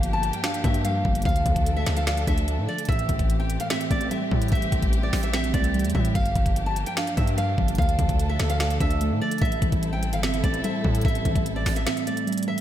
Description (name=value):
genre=hip hop, trap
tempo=147 BPM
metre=4/4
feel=half-time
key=A phrygian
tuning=A4 = 438 Hz
part: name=nylon-string guitar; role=melody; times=0.0-12.6 s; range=D5 to A5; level=-29 LUFS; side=equal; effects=ping-pong delay
part: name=muted felt-like synth keys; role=accompaniment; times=0.0-12.6 s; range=G2 to D5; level=-29 LUFS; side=right 1 dB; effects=chorus
part: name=warm symphonic string section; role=sustained chords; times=0.0-12.6 s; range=E3 to A4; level=-33 LUFS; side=equal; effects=none
part: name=distorted 808-style bass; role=bass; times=0.0-11.9 s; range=G1 to A2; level=-26 LUFS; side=equal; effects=distortion
part: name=trap drum kit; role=drums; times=0.0-12.6 s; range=finger snaps, hi-hat, kick drum, snare drum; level=-26 LUFS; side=equal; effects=none
room=light reverb, digital ambience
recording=none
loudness=-21 LUFS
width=side -11 dB against mid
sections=0.0-12.6 A section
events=kick muted 11.9-12.6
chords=0.0 Gm7; 1.3 Dm; 2.9 Am7; 6.2 Gm7; 7.8 Dm; 9.4 Am7